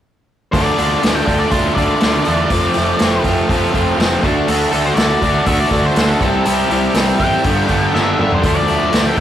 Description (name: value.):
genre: blues rock power trio and southern rock.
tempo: 121 BPM.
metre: 4/4.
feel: straight.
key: unclear.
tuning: A4 = 440 Hz.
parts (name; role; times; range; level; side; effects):
octave-fuzz lead guitar; melody; 0.5-9.2 s; G4 to G5; -21 LUFS; left 3 dB; distortion.
distorted electric guitar; riff; 0.5-9.2 s; G2 to F#4; -15 LUFS; equal; distortion.
fuzz picked electric bass; bass; 0.5-9.2 s; F1 to E2; -21 LUFS; equal; overdrive.
vintage drum kit; drums; 0.5-9.2 s; hi-hat, kick drum, snare drum, toms; -19 LUFS; equal; none.
room: moderate stone room reverb, RT60 1.0 s.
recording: rough rehearsal-room recording, warm saturation.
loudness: -13 LUFS.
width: side -10 dB against mid.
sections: 0.5-9.2 A section.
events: drum fill 7.9-8.4.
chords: 0.5 Dm; 2.5 F; 4.2 D; 6.2 C; 7.5 G; 8.4 Dm.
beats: | 0.53 1.02 1.52 2.01 | 2.51 3.00 3.50 3.99 | 4.49 4.98 5.47 5.97 | 6.46 6.96 7.45 7.95 | 8.44 8.93.